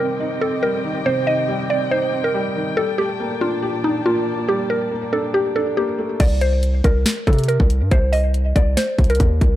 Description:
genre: hip hop, trap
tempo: 140 BPM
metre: 4/4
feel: half-time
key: unclear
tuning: A4 = 440 Hz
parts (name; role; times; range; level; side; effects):
- mallet-like synth pluck; melody; 0.0-9.6 s; Eb4 to Eb5; -21 LUFS; equal; chorus, low-pass filter, digital delay
- felt-muted upright piano; accompaniment; 0.0-6.2 s; C3 to G4; -24 LUFS; equal; low-pass filter
- muted chamber string section; sustained chords; 0.0-6.2 s; Bb2 to A5; -29 LUFS; left 2 dB; none
- hard-hitting 808-style bass; bass; 6.2-9.6 s; C2 to C3; -18 LUFS; equal; none
- trap drum kit; drums; 6.2-9.5 s; crash cymbal, hi-hat, kick drum, snare drum; -18 LUFS; equal; none
room: light reverb, digital ambience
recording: dark, warm production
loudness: -17 LUFS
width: side -13 dB against mid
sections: 0.0-6.2 A section; 6.2-9.6 B section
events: none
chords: 0.0 Cm; 2.8 Gmadd9; 6.2 N.C.

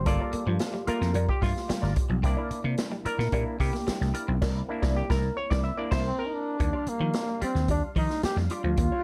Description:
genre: funk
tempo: 110 BPM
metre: 4/4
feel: straight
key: unclear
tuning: A4 = 440 Hz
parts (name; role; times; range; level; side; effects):
- percussive tonewheel organ; sustained chords; 0.0-9.0 s; G3 to F5; -45 LUFS; equal; none
- electric guitar at the edge of break-up; riff; 0.0-8.9 s; F3 to C4; -37 LUFS; equal; subtle chorus
- auto-wah clav; stabs; 0.0-6.6 s; A3 to E5; -35 LUFS; equal; overdrive
- vintage slap bass; bass; 0.0-8.9 s; G1 to Eb3; -30 LUFS; equal; none
- clean electric guitar; accompaniment; 0.1-9.0 s; E4 to E5; -39 LUFS; equal; wah, lush chorus
- swinging big-band drum kit; drums; 0.1-8.9 s; crash cymbal, hi-hat, kick drum, snare drum; -32 LUFS; equal; none
- clear trombone; melody; 6.1-9.0 s; Bb3 to G4; -32 LUFS; equal; none
room: light reverb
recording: dark, warm production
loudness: -28 LUFS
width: mono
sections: 0.0-6.6 A section; 6.6-9.0 B section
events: clav solo 0.0-6.6; band accent 4.4-6.6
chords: 0.0 Gm7; 2.2 C9; 6.6 Ebmaj9

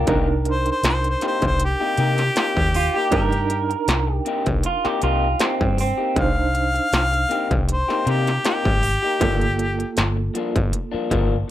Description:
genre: straight-eighth soul blues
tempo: 79 BPM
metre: 4/4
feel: swing 54% on 16ths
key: unclear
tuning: A4 = 440 Hz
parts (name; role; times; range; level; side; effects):
- electric guitar through a small old amp; second line; 0.0-6.2 s; C4 to Bb4; -24 LUFS; right 5 dB; none
- barky reed electric piano; accompaniment; 0.0-11.5 s; Bb3 to C5; -28 LUFS; right 6 dB; overdrive, fast tremolo
- electric guitar through a small old amp; stabs; 0.0-11.5 s; G2 to G4; -26 LUFS; left 5 dB; spring reverb
- vintage muted fingered electric bass; bass; 0.0-11.4 s; G1 to C3; -22 LUFS; equal; none
- industrial drum kit; drums; 0.1-11.3 s; hi-hat, kick drum, snare drum; -23 LUFS; equal; distortion
- clear harmonica; melody; 0.5-10.0 s; G4 to F5; -22 LUFS; left 1 dB; overdrive
room: little or no reverb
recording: none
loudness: -18 LUFS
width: side -12 dB against mid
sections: 0.0-11.5 A section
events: none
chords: 0.1 Cm7; 9.2 Gm7

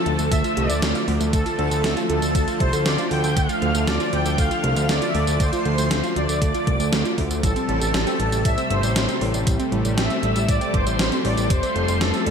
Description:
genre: synthwave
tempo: 118 BPM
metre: 4/4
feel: straight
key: unclear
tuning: A4 = 440 Hz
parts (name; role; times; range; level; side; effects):
- soft supersaw; melody; 0.0-12.3 s; A4 to G5; -26 LUFS; equal; vintage 12-bit sampler grit, ping-pong delay
- string machine, violins; second line; 0.0-12.3 s; A5 to G6; -32 LUFS; equal; ensemble chorus
- lush unison pad; sustained chords; 0.0-12.3 s; C3 to A3; -27 LUFS; equal; chorus, sidechain pumping
- analog pluck; arpeggios; 0.0-12.3 s; G3 to F4; -28 LUFS; right 4 dB; chorus, phaser, ping-pong delay
- fat analog bass; bass; 0.1-12.3 s; F1 to D2; -23 LUFS; equal; none
- gated 80s digital drum machine; drums; 0.1-12.3 s; hi-hat, snare drum, tambourine; -26 LUFS; equal; gated reverb, gated reverb snare, overdrive
- electronic kick drum; drums; 0.3-11.6 s; none; -22 LUFS; equal; overdrive
room: light reverb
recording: none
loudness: -18 LUFS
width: side -6 dB against mid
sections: 0.0-12.3 A section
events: none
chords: 0.0 Dm; 7.4 Am7; 11.5 Fadd9

